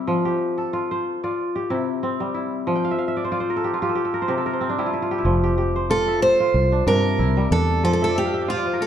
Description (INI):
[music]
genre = west african traditional, West African string and xylophone music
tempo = 93 BPM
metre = 4/4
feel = swing 55% on 16ths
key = F major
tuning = A4 = 440 Hz
[part]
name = kora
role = arpeggios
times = 0.0-8.9 s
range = C3 to G5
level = -22 LUFS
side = left 1 dB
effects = none
[part]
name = fingered electric bass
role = bass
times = 5.2-8.9 s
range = F1 to G2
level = -22 LUFS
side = equal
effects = none
[part]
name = picked steel-string acoustic guitar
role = melody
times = 5.9-8.9 s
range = F4 to C5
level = -20 LUFS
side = right 2 dB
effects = none
[sound]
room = wet recital hall reverb, RT60 1.4 s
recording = dark, warm production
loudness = -19 LUFS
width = side -9 dB against mid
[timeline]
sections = 0.0-5.3 A section; 5.3-8.9 A section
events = kora fill 2.7-5.3, 8.0-8.9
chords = 0.1 F; 1.4 C; 2.7 Fmaj13; 4.0 C5; 5.3 F5; 6.5 C; 7.8 Fmaj13